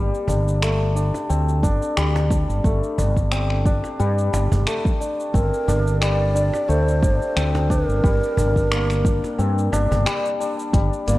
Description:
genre	organic downtempo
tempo	89 BPM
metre	4/4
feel	swing 55% on 16ths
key	G minor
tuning	A4 = 445 Hz
part	santur	arpeggios	0.0-11.2 s	G3 to D4	-24 LUFS	left 2 dB	ping-pong delay
part	mellow fretless electric bass	bass	0.0-11.2 s	G1 to G2	-20 LUFS	equal	tube saturation, analog chorus
part	deep house drum kit	drums	0.1-11.2 s	cabasa, finger snaps, hi-hat	-29 LUFS	equal	overdrive
part	cajon	percussion	0.3-10.0 s	none	-27 LUFS	right 1 dB	none
part	electronic kick drum	drums	1.6-10.9 s	none	-21 LUFS	equal	overdrive
part	breathy mellow ney	melody	5.3-11.2 s	Bb4 to Eb5	-24 LUFS	right 1 dB	ping-pong delay
room	light reverb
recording	worn, warbling old tape, cassette tape, warbly pitch drift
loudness	-18 LUFS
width	side -17 dB against mid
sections	0.0-10.7 A section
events	break 10.1-10.7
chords	0.0 Gm

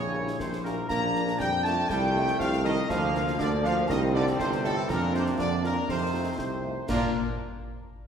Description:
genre	military-style march for wind band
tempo	120 BPM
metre	2/4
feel	straight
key	Bb major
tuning	A4 = 440 Hz
part	dark trumpet section	melody	0.0-7.1 s	A4 to Bb5	-32 LUFS	equal	none
part	clear euphonium	second line	0.0-7.1 s	A2 to Bb3	-32 LUFS	right 1 dB	none
part	warm woodwind section	second line	0.0-7.1 s	F4 to Bb5	-34 LUFS	left 2 dB	none
part	bright trombone section	sustained chords	0.0-7.1 s	F3 to Fb4	-35 LUFS	right 1 dB	none
part	dark tuba	bass	0.0-7.1 s	G1 to Bb2	-29 LUFS	right 1 dB	none
part	mellow French horn section	accompaniment	0.2-7.1 s	G3 to G4	-39 LUFS	left 4 dB	none
part	concert snare drum, concert bass drum and clash cymbals	drums	0.3-7.2 s	none	-39 LUFS	left 1 dB	none
room	wet scoring stage reverb, RT60 1.9 s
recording	recorded in a church or concert hall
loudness	-24 LUFS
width	side -7 dB against mid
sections	0.0-6.9 A section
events	none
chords	0.0 Bbdim7; 0.9 Bb; 1.9 F7/C; 2.9 Bb/D; 3.9 Cm; 4.9 Bb/F; 5.9 F7; 6.9 Bb

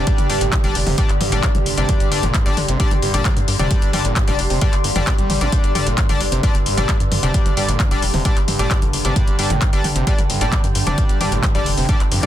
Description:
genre	driving peak-time techno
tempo	132 BPM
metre	4/4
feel	straight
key	unclear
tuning	A4 = 438 Hz
part	screaming distorted acid line	riff	0.0-12.3 s	G1 to G3	-26 LUFS	equal	distortion, chorus, sidechain pumping, ping-pong delay
part	sync-sweep polysynth	stabs	0.0-12.3 s	G3 to D5	-24 LUFS	left 3 dB	chorus, sidechain pumping, ping-pong delay
part	tight sequencer bass	bass	0.0-12.3 s	F1 to G2	-23 LUFS	equal	tube saturation, sidechain pumping
part	overtone-sweeping drone	drone	0.0-12.3 s	G2 to D3	-28 LUFS	right 1 dB	chorus, built-in reverb, sidechain pumping
part	granular cloud pad	texture	0.0-12.3 s	G4 to C6	-27 LUFS	right 1 dB	built-in reverb, sidechain pumping
part	electronic kick drum	drums	0.1-12.0 s	none	-19 LUFS	equal	none
part	techno drum kit	drums	0.1-12.3 s	handclaps, hi-hat, toms	-23 LUFS	left 2 dB	sidechain pumping on hats, sidechain pumping on toms
room	digital ambience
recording	dense, heavily limited modern master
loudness	-15 LUFS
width	side -12 dB against mid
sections	0.0-12.3 A section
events	none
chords	0.0 G5

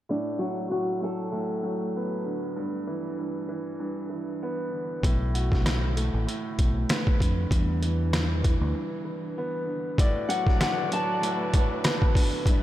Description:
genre	hip hop, boom-bap hip-hop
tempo	97 BPM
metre	4/4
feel	swing 56% on 16ths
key	B minor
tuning	A4 = 440 Hz
part	nylon-string guitar	melody	0.1-2.5, 10.0-12.4 s	D4 to A5	-31 LUFS	left 2 dB	high-pass filter, low-pass filter, analog delay
part	dark baby grand piano	accompaniment	0.1-12.6 s	G2 to F#4	-31 LUFS	right 1 dB	cassette tape, high-pass filter, low-pass filter
part	deep dub fingered electric bass	bass	5.0-8.7 s	A1 to E#2	-26 LUFS	equal	none
part	trip hop sampler-style drum kit	drums	5.0-12.6 s	hi-hat, kick drum, rim click, snare drum	-25 LUFS	equal	none
part	dark symphonic string section	sustained chords	10.0-12.6 s	G3 to D5	-36 LUFS	left 2 dB	high-pass filter, low-pass filter
part	clear horn section	stabs	10.0-12.6 s	G3 to D5	-36 LUFS	left 1 dB	high-pass filter, low-pass filter, analog delay
room	moderate cathedral reverb, RT60 4.7 s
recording	dreamy mix soaked in reverb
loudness	-24 LUFS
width	side -13 dB against mid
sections	0.1-10.0 A section; 10.0-12.6 B section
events	filter sweep 0.1-10.0; break 2.6-5.0, 8.7-10.0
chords	0.1 Bm7; 2.6 Em7; 5.0 Bm7; 7.5 Em7; 10.0 Bm7

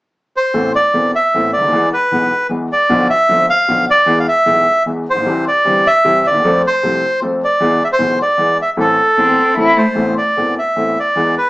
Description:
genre	tango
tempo	153 BPM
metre	3/4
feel	rubato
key	A harmonic minor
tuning	A4 = 439 Hz
part	bandoneon	melody	0.4-11.5 s	A4 to F5	-12 LUFS	equal	none
part	clear upright piano	accompaniment	0.5-11.3 s	E1 to A4	-18 LUFS	left 1 dB	none
part	warm cello	second line	9.2-10.0 s	A3 to E4	-14 LUFS	left 1 dB	none
room	wet studio ambience, RT60 0.5 s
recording	band playing live in one room, small speaker sound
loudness	-11 LUFS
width	side -20 dB against mid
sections	0.5-10.0 A section; 10.0-11.5 A section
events	none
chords	0.0 N.C.; 0.5 Amadd9; 1.7 E; 2.9 Bdim; 4.1 E; 5.3 C; 6.4 F; 7.6 E; 8.8 Am; 10.0 Amadd9

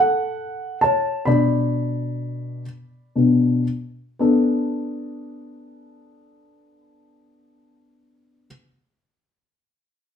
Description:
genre	pop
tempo	37-48 BPM (dotted quarters)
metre	6/8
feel	straight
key	B minor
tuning	A4 = 439 Hz
part	dark baby grand piano	accompaniment	0.0-8.5 s	B2 to B5	-19 LUFS	left 1 dB	none
room	wet studio reverb, RT60 0.8 s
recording	band playing live in one room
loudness	-19 LUFS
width	side -8 dB against mid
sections	0.0-4.2 A section; 4.2-7.5 B section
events	slowing down 0.0-4.2; grand piano solo 0.0-4.2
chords	0.0 B7(no3) (rootless); 1.3 Bm; 4.2 Bm7

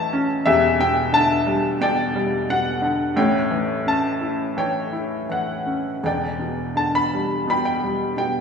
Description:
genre	classical, lyrical solo piano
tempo	80-91 BPM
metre	4/4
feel	rubato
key	unclear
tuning	A4 = 440 Hz
part	clear baby grand piano	solo	0.0-8.4 s	E1 to C#6	-19 LUFS	left 1 dB	none
room	wet recital hall reverb, RT60 1.7 s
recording	recorded in a church or concert hall, small room ambience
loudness	-19 LUFS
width	side -6 dB against mid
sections	0.0-8.4 A section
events	none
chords	0.5 Em7; 3.2 A7; 6.0 Em7

